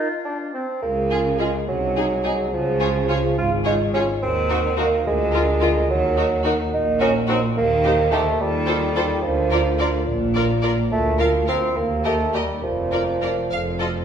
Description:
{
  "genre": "cinematic",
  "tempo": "71 BPM (dotted quarters)",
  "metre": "6/8",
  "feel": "straight",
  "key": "Db major, Bb major from 7.6 s",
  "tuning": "A4 = 436 Hz",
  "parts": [
    { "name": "clear clarinet", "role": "second line", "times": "0.0-0.7 s", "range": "C4 to D4", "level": "-31 LUFS", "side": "left 2 dB", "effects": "none" },
    { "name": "clear oboe", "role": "second line", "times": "0.0-0.5 s", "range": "F4", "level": "-34 LUFS", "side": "equal", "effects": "none" },
    { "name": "mellow bassoon", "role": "accompaniment", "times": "0.0-14.0 s", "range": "F3 to F4", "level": "-22 LUFS", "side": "right 3 dB", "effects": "none" },
    { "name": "dark French horn section", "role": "sustained chords", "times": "0.0-14.0 s", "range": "Eb4 to D5", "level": "-27 LUFS", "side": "left 3 dB", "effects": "none" },
    { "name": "clear studio cello section", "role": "bass", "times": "0.8-14.0 s", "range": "D2 to Eb3", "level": "-27 LUFS", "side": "right 2 dB", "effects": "none" },
    { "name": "rich studio double bass section", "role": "bass", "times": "0.8-14.0 s", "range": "F1 to Eb2", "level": "-26 LUFS", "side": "right 1 dB", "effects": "none" },
    { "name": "clear studio violin section", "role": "melody", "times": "1.1-13.9 s", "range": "Ab4 to F5", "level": "-31 LUFS", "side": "left 4 dB", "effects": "none" },
    { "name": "rich studio violin section", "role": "second line", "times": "1.1-13.9 s", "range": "F4 to Bb4", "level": "-30 LUFS", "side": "left 2 dB", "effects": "none" },
    { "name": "rich studio viola section", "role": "accompaniment", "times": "1.1-13.9 s", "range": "Eb4 to G4", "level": "-30 LUFS", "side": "right 1 dB", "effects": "none" }
  ],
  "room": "wet recital hall reverb, RT60 1.6 s",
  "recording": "recorded in a church or concert hall",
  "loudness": "-18 LUFS",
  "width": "side -8 dB against mid",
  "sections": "0.8-14.0 A section",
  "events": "none",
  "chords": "0.0 Bb (rootless); 0.8 Db; 1.7 Ab7/C; 2.5 Db; 4.2 Ebm; 5.1 Bb7/D; 5.9 Ebm; 7.6 Cm7/Eb; 8.4 F7/Eb; 9.2 Bb/D; 10.1 Bb; 10.9 Bb/D; 11.8 Eb; 12.6 Bb/F; 13.5 F"
}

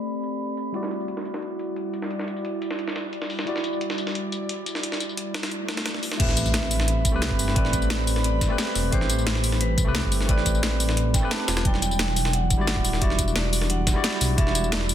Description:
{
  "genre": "liquid drum and bass",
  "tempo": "176 BPM",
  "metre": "4/4",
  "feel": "straight",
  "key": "A dorian",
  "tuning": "A4 = 443 Hz",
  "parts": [
    { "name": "vibraphone with medium hard mallets", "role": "melody", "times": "0.0-0.5, 6.2-14.9 s", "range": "B4 to A5", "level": "-32 LUFS", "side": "left 2 dB", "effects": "vintage 12-bit sampler grit, ping-pong delay" },
    { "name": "bright tine electric piano", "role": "accompaniment", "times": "0.0-14.9 s", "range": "F#3 to D5", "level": "-30 LUFS", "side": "equal", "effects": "auto-pan, dub echo" },
    { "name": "airy breathy pad", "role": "sustained chords", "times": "0.0-14.9 s", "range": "G3 to B5", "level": "-33 LUFS", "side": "right 2 dB", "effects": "chorus" },
    { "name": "drum and bass drum kit", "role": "drums", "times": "0.2-14.9 s", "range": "crash cymbal, hi-hat, rim click, snare drum, tambourine", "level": "-29 LUFS", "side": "left 1 dB", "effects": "low-pass filter on cymbals, low-pass filter on perc, low-pass filter on hats, low-pass filter on snare, low-pass filter on room" },
    { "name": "jungle sampler-style drum kit", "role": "drums", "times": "0.7-14.9 s", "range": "hi-hat, snare drum", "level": "-30 LUFS", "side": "equal", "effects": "high-pass filter on hats, high-pass filter on snare, high-pass filter on room" },
    { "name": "swell and impact", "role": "sound effects", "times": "5.6-7.6 s", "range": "none", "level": "-33 LUFS", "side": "equal", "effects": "none" },
    { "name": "dark detuned saw bass", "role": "bass", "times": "6.2-14.9 s", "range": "D1 to C2", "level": "-25 LUFS", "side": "equal", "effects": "none" },
    { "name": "electronic kick drum", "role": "drums", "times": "6.2-14.4 s", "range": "none", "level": "-24 LUFS", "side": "equal", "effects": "none" }
  ],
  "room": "light reverb",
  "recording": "dense, heavily limited modern master, low-pass filter",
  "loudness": "-22 LUFS",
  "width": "side -11 dB against mid",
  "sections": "0.0-6.2 A section; 6.2-14.9 B section",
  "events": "filter sweep on analog synth pad 0.0-6.2; filter sweep 0.0-6.2; swell 5.6-6.2; drop 6.2-14.9; impact 6.2-7.6",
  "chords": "0.0 Am9; 0.7 Em9; 6.2 Am9; 11.7 Em9"
}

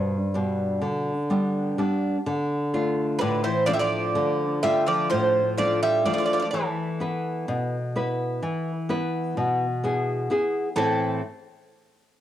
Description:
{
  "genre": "greek folk, Greek bouzouki band",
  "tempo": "127 BPM (eighths)",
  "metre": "9/8",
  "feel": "straight",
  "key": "A minor",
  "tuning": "A4 = 438 Hz",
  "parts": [
    { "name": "Greek bouzouki", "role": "melody", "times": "0.0-11.2 s", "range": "A4 to E5", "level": "-24 LUFS", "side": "right 3 dB", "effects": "cassette tape, plate reverb" },
    { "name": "Greek bouzouki", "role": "second line", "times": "0.0-11.2 s", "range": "D3 to C4", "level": "-32 LUFS", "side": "left 7 dB", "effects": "cassette tape, plate reverb" },
    { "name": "nylon-string guitar", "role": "accompaniment", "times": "0.0-11.2 s", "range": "G2 to B4", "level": "-24 LUFS", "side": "left 1 dB", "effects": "cassette tape" }
  ],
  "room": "moderate studio reverb, RT60 0.5 s",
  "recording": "home recording on cassette",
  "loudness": "-22 LUFS",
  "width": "side -12 dB against mid",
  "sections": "0.0-10.8 A section; 10.8-12.2 B section",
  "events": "none",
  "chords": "0.0 G; 2.3 Dm; 6.5 E; 10.8 Am"
}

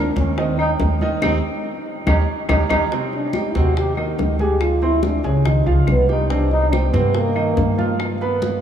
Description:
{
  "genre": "Afro-Cuban jazz",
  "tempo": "142 BPM",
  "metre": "4/4",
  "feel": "straight",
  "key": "Eb major",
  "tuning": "A4 = 441 Hz",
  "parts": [
    { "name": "breathy trombone", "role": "melody", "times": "0.0-8.0 s", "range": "Ab3 to G4", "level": "-21 LUFS", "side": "equal", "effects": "none" },
    { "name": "warm concert grand piano", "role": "accompaniment", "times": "0.0-8.6 s", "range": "C3 to C6", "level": "-24 LUFS", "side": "right 3 dB", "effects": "none" },
    { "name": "upright bass", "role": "bass", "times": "0.0-8.6 s", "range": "C2 to G2", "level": "-20 LUFS", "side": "equal", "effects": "none" },
    { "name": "bongos", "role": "percussion", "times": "0.2-8.6 s", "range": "none", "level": "-30 LUFS", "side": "left 5 dB", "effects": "none" },
    { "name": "congas", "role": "percussion", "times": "0.2-8.6 s", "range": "none", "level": "-28 LUFS", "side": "left 1 dB", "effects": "none" },
    { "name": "claves", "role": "percussion", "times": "0.6-8.2 s", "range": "none", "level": "-32 LUFS", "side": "left 1 dB", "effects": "none" }
  ],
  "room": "moderate cathedral reverb, RT60 6.3 s",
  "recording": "in a vast, echoing space, small room ambience",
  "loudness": "-16 LUFS",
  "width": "side -9 dB against mid",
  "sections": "0.0-2.9 A section; 2.9-8.6 A section",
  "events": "trombone solo 0.0-8.6; band accent 1.2-2.9",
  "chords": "0.0 Eb; 2.1 Eb7; 2.9 Abmaj7; 4.6 Dm9b5; 5.5 Db; 6.3 Cm7; 8.0 G7"
}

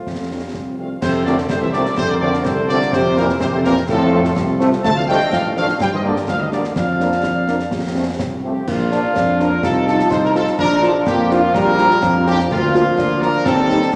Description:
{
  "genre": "military-style march for wind band",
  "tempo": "126 BPM",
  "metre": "2/4",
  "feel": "straight",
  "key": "F major, Bb major from 4.9 s",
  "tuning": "A4 = 440 Hz",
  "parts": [
    { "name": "warm trumpet section", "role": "melody", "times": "0.0-14.0 s", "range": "F4 to A5", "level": "-24 LUFS", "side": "equal", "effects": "none" },
    { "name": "mellow euphonium", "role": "second line", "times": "0.0-13.9 s", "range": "A2 to F4", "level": "-24 LUFS", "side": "equal", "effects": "none" },
    { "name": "dark tuba", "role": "bass", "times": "0.1-13.9 s", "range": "A1 to G2", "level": "-24 LUFS", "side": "equal", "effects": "none" },
    { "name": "concert snare drum, concert bass drum and clash cymbals", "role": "drums", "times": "0.1-14.0 s", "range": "none", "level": "-29 LUFS", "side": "equal", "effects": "none" },
    { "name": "mellow French horn section", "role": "accompaniment", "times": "0.3-13.8 s", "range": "E3 to F4", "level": "-25 LUFS", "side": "equal", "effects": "none" },
    { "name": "mellow large flute ensemble", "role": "second line", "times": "0.8-13.9 s", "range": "F4 to C6", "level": "-26 LUFS", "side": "equal", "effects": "none" },
    { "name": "mellow trombone section", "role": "sustained chords", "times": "1.3-13.9 s", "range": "C3 to Eb4", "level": "-28 LUFS", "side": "equal", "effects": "none" }
  ],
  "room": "wet scoring stage reverb, RT60 2.0 s",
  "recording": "none",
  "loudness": "-17 LUFS",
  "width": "mono",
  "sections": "0.0-1.0 A section; 1.0-8.7 B section; 8.7-14.0 A section",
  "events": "none",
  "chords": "0.0 F; 2.9 C7/F; 3.9 F; 4.9 Dm; 5.8 Gm; 6.8 Bb/F; 7.7 F; 8.7 Bb; 9.6 F5/C; 10.6 Bb; 12.5 Bb/D"
}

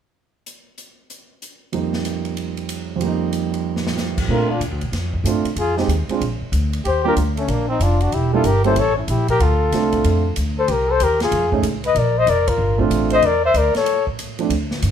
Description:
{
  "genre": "jazz, small-group swing and bop",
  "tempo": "188 BPM",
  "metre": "4/4",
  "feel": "swing 63% on 8ths",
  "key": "Bb major",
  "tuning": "A4 = 440 Hz",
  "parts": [
    { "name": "swinging big-band drum kit", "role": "drums", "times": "0.5-14.9 s", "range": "crash cymbal, hi-hat, kick drum, ride cymbal, snare drum", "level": "-29 LUFS", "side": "right 1 dB", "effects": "none" },
    { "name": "warm grand piano", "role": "accompaniment", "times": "1.7-14.5 s", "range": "F2 to G#4", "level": "-21 LUFS", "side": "right 6 dB", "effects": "none" },
    { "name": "mellow flugelhorn", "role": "melody", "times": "4.3-14.1 s", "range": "Db4 to E5", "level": "-19 LUFS", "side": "left 5 dB", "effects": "none" },
    { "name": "warm trumpet", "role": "second line", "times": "4.3-14.1 s", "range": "A3 to C5", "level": "-24 LUFS", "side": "right 2 dB", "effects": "none" },
    { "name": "upright bass", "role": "bass", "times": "4.3-14.9 s", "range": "E1 to Bb2", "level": "-20 LUFS", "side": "equal", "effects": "none" }
  ],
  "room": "light reverb",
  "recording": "band playing live in one room",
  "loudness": "-17 LUFS",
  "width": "side -8 dB against mid",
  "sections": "0.5-1.7 A section; 1.7-4.3 B section; 4.3-14.5 C section",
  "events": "drum fill 3.7-4.0; band accent 12.4; break 13.9-14.5",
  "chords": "0.5 N.C.; 1.7 F7sus4; 4.3 Bbmaj7; 5.6 Fm7; 6.2 Bb; 6.9 Ebmaj7; 8.1 Em7b5; 8.8 A7b9; 9.4 Dm7; 10.7 Cm; 11.3 F7alt; 12.0 Bbmaj7; 13.2 Bbadd9(#11); 13.9 F6"
}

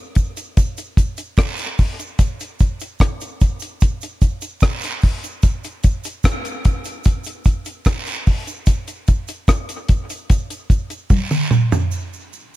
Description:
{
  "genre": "reggae",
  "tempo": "74 BPM",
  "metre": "4/4",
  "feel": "straight",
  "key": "none",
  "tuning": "none",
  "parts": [
    { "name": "deep reggae drum kit", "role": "drums", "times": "0.2-11.9 s", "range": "hi-hat, kick drum, rim click, toms", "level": "-16 LUFS", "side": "equal", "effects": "none" },
    { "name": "cabasa and guiro", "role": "percussion", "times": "0.2-12.6 s", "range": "none", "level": "-32 LUFS", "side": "right 4 dB", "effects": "dub echo" }
  ],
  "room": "little or no reverb",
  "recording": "echo-heavy mix",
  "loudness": "-17 LUFS",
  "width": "side -16 dB against mid",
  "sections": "0.0-11.9 A section",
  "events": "drum fill 11.1-11.9",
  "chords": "none"
}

